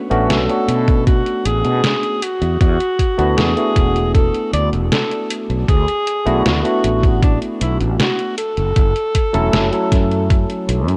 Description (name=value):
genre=vaporwave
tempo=78 BPM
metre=4/4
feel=straight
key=B dorian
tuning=A4 = 442 Hz
part: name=barky tine electric piano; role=accompaniment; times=0.0-11.0 s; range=F#3 to A4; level=-22 LUFS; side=equal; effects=analog chorus
part: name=fretless electric bass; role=bass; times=0.1-11.0 s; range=E1 to B2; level=-21 LUFS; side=equal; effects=tube saturation
part: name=detuned 8-bit digital drum machine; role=drums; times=0.1-11.0 s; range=hi-hat, snare drum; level=-24 LUFS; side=equal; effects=overdrive
part: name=warm alto saxophone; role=melody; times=0.3-10.8 s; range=D4 to D5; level=-23 LUFS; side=equal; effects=vintage 12-bit sampler grit, tape echo
part: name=electronic kick drum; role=drums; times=0.9-10.5 s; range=none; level=-17 LUFS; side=equal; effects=overdrive
room=digital ambience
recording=cassette tape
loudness=-17 LUFS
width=mono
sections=0.0-11.0 A section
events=none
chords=0.0 Bm7; 2.2 E7sus4; 5.7 D6; 8.4 F#m7